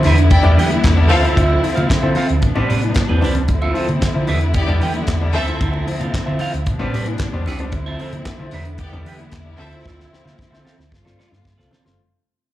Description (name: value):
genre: disco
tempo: 113 BPM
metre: 4/4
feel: straight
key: D dorian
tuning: A4 = 440 Hz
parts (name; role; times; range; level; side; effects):
- bright grand piano; accompaniment; 0.0-12.0 s; G2 to F4; -26 LUFS; left 4 dB; plate reverb, slapback echo
- rich studio string section; sustained chords; 0.0-12.0 s; C3 to F4; -24 LUFS; left 1 dB; plate reverb
- hollow-body short-scale fingered electric bass; bass; 0.0-12.0 s; F#1 to E3; -18 LUFS; equal; none
- damped 70s drum kit; drums; 0.0-12.0 s; handclaps, hi-hat, kick drum, snare drum; -20 LUFS; equal; none
- congas; percussion; 0.0-11.8 s; none; -30 LUFS; left 6 dB; slapback echo
- clean electric guitar; accompaniment; 0.1-11.9 s; C4 to G5; -24 LUFS; right 4 dB; phaser, plate reverb, slapback echo
- clear studio string section; second line; 0.3-1.3, 4.5-5.6, 8.8-9.8 s; B3 to G5; -22 LUFS; left 1 dB; plate reverb, slapback echo
room: light reverb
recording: live gig heard through the venue's PA, club reverb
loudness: -15 LUFS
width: side -14 dB against mid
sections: 0.0-12.0 A section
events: fade-out 0.1-12.0; drum fill 9.9-12.0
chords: 0.0 Em7; 1.1 Dm9; 2.4 Am11; 3.5 Dm9; 4.3 Em7; 5.3 Dm9; 6.7 Am11; 7.7 Dm9; 8.5 Em7; 9.6 Dm9; 10.9 G9sus4